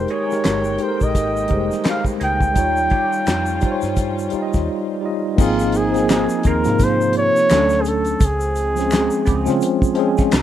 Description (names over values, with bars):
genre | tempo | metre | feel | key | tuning
R&B, neo-soul | 85 BPM | 4/4 | swing 58% on 16ths | Ab major | A4 = 441 Hz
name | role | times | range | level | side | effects
breathy flugelhorn | melody | 0.0-9.6 s | F4 to G5 | -21 LUFS | right 1 dB | none
tine electric piano | accompaniment | 0.0-10.3 s | C3 to Eb5 | -20 LUFS | left 1 dB | medium stereo tremolo
rich studio string section | sustained chords | 0.0-5.4 s | Eb3 to G5 | -33 LUFS | left 2 dB | none
vintage muted fingered electric bass | bass | 0.0-10.4 s | F1 to Db3 | -25 LUFS | equal | none
electric guitar through a small old amp | second line | 0.1-10.3 s | Bb3 to Ab4 | -34 LUFS | right 4 dB | wah, tremolo
damped 70s drum kit | drums | 0.1-10.4 s | crash cymbal, handclaps, hi-hat, kick drum, snare drum | -20 LUFS | equal | none
egg shaker and finger snaps | percussion | 0.3-10.4 s | none | -35 LUFS | left 5 dB | none
warm trombone section | stabs | 5.4-10.4 s | D3 to Eb4 | -29 LUFS | right 4 dB | none
room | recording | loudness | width
light reverb, small room ambience | rough home demo mix | -16 LUFS | side -11 dB against mid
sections
0.0-5.4 A section; 5.4-10.4 B section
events
drums muted 4.7-5.4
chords
0.0 Fm11 (rootless); 2.6 Eb9; 5.4 Ab69; 7.5 Dmaj7; 8.2 Dbmaj7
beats
0.44 1.15 1.85 | 2.56 3.27 3.97 4.68 | 5.38 6.09 6.80 7.50 | 8.21 8.91 9.62 10.33